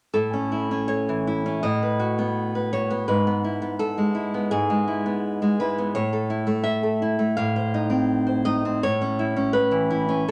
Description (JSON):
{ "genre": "romantic piece for solo classical guitar", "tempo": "83 BPM", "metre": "4/4", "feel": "rubato", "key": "A major", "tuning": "A4 = 436 Hz", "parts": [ { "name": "nylon-string guitar", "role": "solo", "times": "0.1-10.3 s", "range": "G#2 to F5", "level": "-24 LUFS", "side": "equal", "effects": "none" } ], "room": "wet small room reverb, RT60 0.6 s", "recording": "none", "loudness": "-24 LUFS", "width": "mono", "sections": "0.1-10.3 A section", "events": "none", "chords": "0.1 A; 1.6 B7/A; 3.1 E/G#; 6.0 A; 7.4 Adim; 8.8 A" }